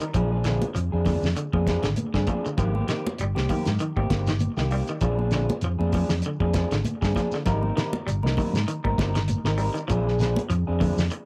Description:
afrobeat; 98 BPM; 4/4; swing 56% on 16ths; Bb mixolydian; A4 = 440 Hz
clean electric guitar; arpeggios; 0.0-11.1 s; D3 to G3; -34 LUFS; equal; cassette tape, analog delay
electric guitar through a small old amp; stabs; 0.0-11.0 s; Eb3 to Bb4; -32 LUFS; equal; spring reverb, cassette tape
damped 70s drum kit; drums; 0.0-11.3 s; hi-hat, kick drum, snare drum; -31 LUFS; equal; cassette tape
shekere; percussion; 0.0-11.3 s; -36 LUFS; equal
fingered electric bass; bass; 0.1-11.1 s; G1 to Ab2; -28 LUFS; equal
congas; percussion; 0.1-11.0 s; -34 LUFS; equal
light reverb; home recording on cassette; -25 LUFS; mono
0.0-11.3 A section
0.1 Bb9; 2.6 Abmaj9; 5.0 Bb9; 7.5 Abmaj9; 9.9 Bb9
| 0.14 0.75 1.36 1.97 | 2.58 3.19 3.80 4.41 | 5.02 5.63 6.24 6.85 | 7.46 8.07 8.68 9.29 | 9.90 10.50 11.11

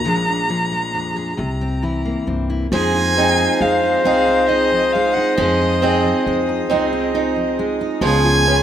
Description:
acoustic folk-pop ballad; 45 BPM (dotted quarters); 6/8; straight; A4 = 440 Hz
rich violin; melody; 0.0-8.6 s; Eb5 to Bb5; -20 LUFS; equal
fingerpicked steel-string acoustic guitar; accompaniment; 0.0-8.6 s; F2 to Ab4; -23 LUFS; left 2 dB
upright bass; bass; 0.0-8.6 s; Bb1 to F2; -24 LUFS; equal
clear clarinet; second line; 2.7-8.6 s; Ab4 to C5; -20 LUFS; left 2 dB
warm chamber string section; sustained chords; 2.7-8.6 s; Ab4 to Eb6; -33 LUFS; left 2 dB
picked acoustic archtop guitar; arpeggios; 2.7-8.6 s; F3 to Ab4; -19 LUFS; right 4 dB
light reverb, small room ambience; rough home demo mix; -15 LUFS; side -10 dB against mid
0.0-2.7 A section; 2.7-8.6 B section
0.1 Bb7; 1.4 C7; 2.7 Fm7; 8.0 Db7
| 0.06 1.39 | 2.71 4.04 | 5.37 6.69 | 8.02

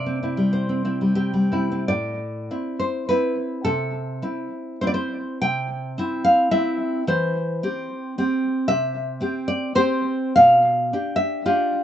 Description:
romantic piece for solo classical guitar; 77-114 BPM; 3/4; rubato; A minor, C major from 8.7 s; A4 = 440 Hz
nylon-string guitar; solo; 0.0-11.8 s; A2 to G5; -20 LUFS; equal; slapback echo
little or no reverb; recorded outdoors, with no room sound, nothing above 8.0 kHz; -20 LUFS; side -10 dB against mid
0.0-1.9 A section; 1.9-11.8 B section
0.0 C; 1.9 Am; 3.7 Am/C; 7.1 C/E; 8.7 C; 10.4 G7/B
0.55 1.19 | 1.91 2.52 3.10 | 3.66 4.23 4.80 | 5.43 5.99 6.53 | 7.07 7.62 8.16 | 8.70 9.23 9.76 | 10.37 10.93 11.46

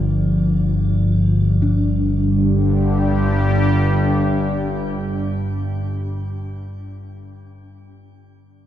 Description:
ambient; free time; A4 = 437 Hz
sweeping resonant pad; sustained chords; 0.0-6.8 s; G2 to G4; -20 LUFS; equal; chorus, shimmer reverb
gamelan-type bronze metallophone; arpeggios; 0.0-6.3 s; D4 to F4; -28 LUFS; left 3 dB; tape echo, shimmer reverb
analog drone; drone; 0.0-6.3 s; G1 to G2; -20 LUFS; equal; chorus
icy glass pad; texture; 0.0-1.6 s; D5; -47 LUFS; right 2 dB; chorus, built-in reverb, shimmer reverb
wet cathedral reverb, RT60 6.3 s; in a vast, echoing space; -16 LUFS; side -11 dB against mid
0.0-1.6 A section; 1.6-6.1 B section
0.0 G5
free time

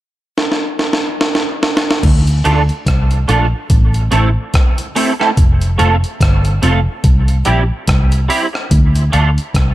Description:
dub reggae; 72 BPM; 4/4; swing 59% on 16ths; D minor; A4 = 440 Hz
breakbeat sampler-style drum kit; drums; 0.4-9.7 s; crash cymbal, hi-hat, kick drum, rim click, snare drum; -15 LUFS; equal
vintage muted fingered electric bass; bass; 2.0-9.7 s; F1 to D2; -13 LUFS; equal
electric guitar at the edge of break-up; accompaniment; 2.4-9.3 s; G3 to A4; -17 LUFS; right 2 dB; ensemble chorus, high-pass filter, dub echo
little or no reverb; -11 LUFS; side -15 dB against mid
0.0-2.0 A section; 2.0-9.7 B section
drum fill 0.4-2.0
0.0 N.C.; 2.0 Dm; 3.7 Am; 5.4 F; 7.0 C; 8.7 Dm
0.37 1.20 | 2.04 2.87 3.70 4.54 | 5.37 6.21 7.04 7.88 | 8.71 9.54

